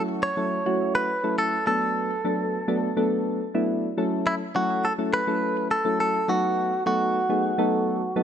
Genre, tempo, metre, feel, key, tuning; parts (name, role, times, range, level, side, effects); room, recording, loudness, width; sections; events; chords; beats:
pop; 104 BPM; 4/4; straight; F# minor; A4 = 440 Hz
soft electric-piano-like synth keys; accompaniment; 0.0-8.2 s; F#3 to A4; -25 LUFS; equal; chorus
direct-recorded clean electric guitar; melody; 0.2-8.2 s; E4 to C#5; -25 LUFS; right 1 dB; tape echo
light reverb; -22 LUFS; side -8 dB against mid
0.0-8.2 A section
0.0 F#m7; 1.7 Bm7; 4.0 F#m7; 6.3 B7
0.52 1.09 | 1.67 2.25 2.82 3.40 | 3.98 4.55 5.13 5.71 | 6.29 6.86 7.44 8.02